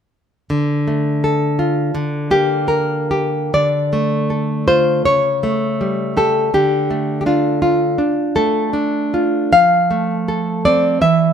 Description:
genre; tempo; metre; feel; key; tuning
romantic piece for solo classical guitar; 80 BPM; 4/4; uneven beats, rubato; D minor; A4 = 439 Hz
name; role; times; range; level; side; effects
nylon-string guitar; solo; 0.5-11.3 s; C#3 to F5; -14 LUFS; equal; none
room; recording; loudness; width
moderate stone room reverb, RT60 1.4 s; band playing live in one room; -14 LUFS; side -8 dB against mid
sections
0.5-3.5 A section; 3.5-11.3 B section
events
none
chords
0.5 Dm; 1.9 Gm/D; 3.5 Dm; 5.1 A7/C#; 6.5 Dm; 9.5 F

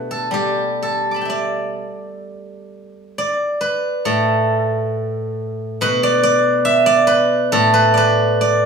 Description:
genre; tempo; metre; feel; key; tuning
chinese traditional, Chinese solo plucked strings; 60-71 BPM; 4/4; rubato; D zhi mode; A4 = 441 Hz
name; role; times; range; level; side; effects
steel-string zither; solo; 0.0-8.7 s; A2 to D6; -15 LUFS; right 1 dB; none
room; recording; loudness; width
moderate studio reverb, RT60 0.8 s; band playing live in one room, studio reverb; -15 LUFS; side -6 dB against mid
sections
0.0-2.3 A section; 2.3-8.7 B section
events
none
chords
none

